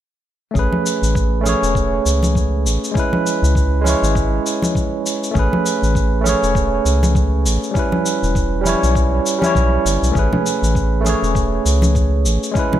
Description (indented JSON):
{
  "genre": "sunset chillout",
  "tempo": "100 BPM",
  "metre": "4/4",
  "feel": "swing 58% on 16ths",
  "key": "A major",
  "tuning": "A4 = 440 Hz",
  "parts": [
    { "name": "barky tine electric piano", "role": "accompaniment", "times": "0.5-12.8 s", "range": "G3 to C#5", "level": "-18 LUFS", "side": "right 1 dB", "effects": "auto-pan, ping-pong delay" },
    { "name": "round analog bass", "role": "bass", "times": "0.6-12.4 s", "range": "E1 to C#2", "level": "-17 LUFS", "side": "equal", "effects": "none" },
    { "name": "cabasa", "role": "drums", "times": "0.6-12.7 s", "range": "none", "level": "-25 LUFS", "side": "left 2 dB", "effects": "none" },
    { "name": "electronic kick drum", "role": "drums", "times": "0.6-12.7 s", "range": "none", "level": "-21 LUFS", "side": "equal", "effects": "none" },
    { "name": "congas", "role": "percussion", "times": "0.7-12.8 s", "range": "none", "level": "-23 LUFS", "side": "left 1 dB", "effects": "none" }
  ],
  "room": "light reverb, digital ambience",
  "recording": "bright 1980s-style digital production",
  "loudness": "-15 LUFS",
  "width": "side -11 dB against mid",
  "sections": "0.6-12.8 A section",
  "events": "none",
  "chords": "0.6 Amaj9; 3.0 C#m7; 5.4 Amaj9; 7.8 Em6; 10.2 Amaj9",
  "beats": "| 0.56 1.16 1.75 2.35 | 2.96 3.56 4.16 4.75 | 5.36 5.96 6.55 7.16 | 7.75 8.36 8.96 9.55 | 10.15 10.76 11.36 11.96 | 12.55"
}